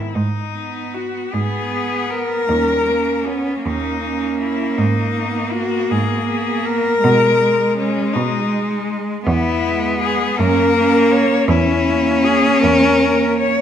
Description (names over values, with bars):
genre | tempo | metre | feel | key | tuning
classical, lyrical piece for cello ensemble | 53 BPM (dotted quarters) | 6/8 | rubato | G# minor | A4 = 440 Hz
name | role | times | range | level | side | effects
clear cello | melody | 0.0-13.6 s | C#4 to C#5 | -19 LUFS | left 4 dB | none
clear cello | bass | 0.2-13.6 s | D#2 to B2 | -22 LUFS | right 2 dB | none
rich cello | second line | 0.6-13.6 s | G#3 to C#4 | -23 LUFS | right 8 dB | none
rich cello | accompaniment | 1.3-13.6 s | G3 to C#4 | -20 LUFS | left 1 dB | none
room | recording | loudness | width
wet recital hall reverb, RT60 1.3 s | none | -15 LUFS | side -9 dB against mid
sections
0.2-13.6 A section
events
none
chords
0.2 G#m; 2.5 D#5; 4.8 G#m; 7.0 G#m/B; 9.3 E; 10.4 F#; 11.5 A#dim/E